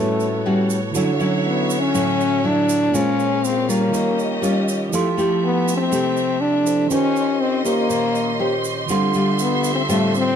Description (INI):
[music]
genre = bossa nova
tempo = 121 BPM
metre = 4/4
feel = straight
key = unclear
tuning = A4 = 440 Hz
[part]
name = warm French horn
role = melody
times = 0.0-10.4 s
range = A3 to D4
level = -20 LUFS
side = left 2 dB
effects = none
[part]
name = bell-like tine electric piano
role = accompaniment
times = 0.0-10.4 s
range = D3 to C6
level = -26 LUFS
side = right 6 dB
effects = none
[part]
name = nylon-string guitar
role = accompaniment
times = 0.0-10.4 s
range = A2 to B#4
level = -22 LUFS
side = left 1 dB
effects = none
[part]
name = warm symphonic string section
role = sustained chords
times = 0.0-10.4 s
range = A3 to B#5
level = -26 LUFS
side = right 1 dB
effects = none
[part]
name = tube shaker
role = percussion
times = 0.2-10.4 s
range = none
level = -32 LUFS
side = right 8 dB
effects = none
[sound]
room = moderate studio reverb, RT60 0.9 s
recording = none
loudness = -17 LUFS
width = side -8 dB against mid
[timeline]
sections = 0.0-10.4 A section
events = none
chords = 0.0 A13; 0.9 Dmaj9; 2.9 Bbm7; 3.9 D#9; 4.9 Fmaj9; 6.9 D#13; 8.9 Dm11